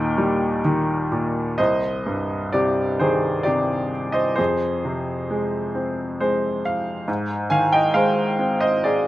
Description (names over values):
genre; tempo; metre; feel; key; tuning
classical, lyrical solo piano; 63-69 BPM; 3/4; rubato; C minor; A4 = 440 Hz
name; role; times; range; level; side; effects
bright baby grand piano; solo; 0.0-9.1 s; C2 to Ab5; -19 LUFS; equal; none
room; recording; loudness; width
little or no reverb; close, detailed microphones; -19 LUFS; side -15 dB against mid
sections
0.0-1.6 A section; 1.6-9.1 B section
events
grand piano fill 5.8-7.1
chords
0.0 Eb; 1.6 Cm; 4.4 Fm; 7.1 Ab